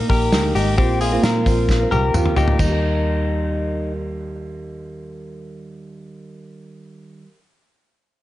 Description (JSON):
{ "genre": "jangly indie pop", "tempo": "132 BPM", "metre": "4/4", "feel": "straight", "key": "Eb major", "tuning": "A4 = 436 Hz", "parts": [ { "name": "fingerpicked steel-string acoustic guitar", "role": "accompaniment", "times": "0.0-7.4 s", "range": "Eb3 to Bb4", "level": "-25 LUFS", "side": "right 4 dB", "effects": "none" }, { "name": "direct-recorded clean electric guitar", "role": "arpeggios", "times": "0.0-3.9 s", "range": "C4 to Bb4", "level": "-22 LUFS", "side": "left 4 dB", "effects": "spring reverb" }, { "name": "vintage muted fingered electric bass", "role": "bass", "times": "0.0-7.2 s", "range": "Ab1 to Bb2", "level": "-23 LUFS", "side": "equal", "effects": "none" }, { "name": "loose indie drum kit", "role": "drums", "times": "0.1-2.7 s", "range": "crash cymbal, hi-hat, kick drum, snare drum, toms", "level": "-21 LUFS", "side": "equal", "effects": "gated reverb" }, { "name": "tambourine", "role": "percussion", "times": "0.1-2.8 s", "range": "none", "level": "-38 LUFS", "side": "right 4 dB", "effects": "none" } ], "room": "small room ambience", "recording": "nothing above 10.5 kHz", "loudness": "-16 LUFS", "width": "side -15 dB against mid", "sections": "0.0-2.6 A section; 2.6-6.2 B section", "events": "drum fill 1.7-2.6", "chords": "0.0 Absus2; 0.8 Bbsus2; 2.6 Eb", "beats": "0.33 | 0.78 1.23 1.69 2.14 | 2.60 3.05 3.50 3.96 | 4.41 4.87 5.32 5.78" }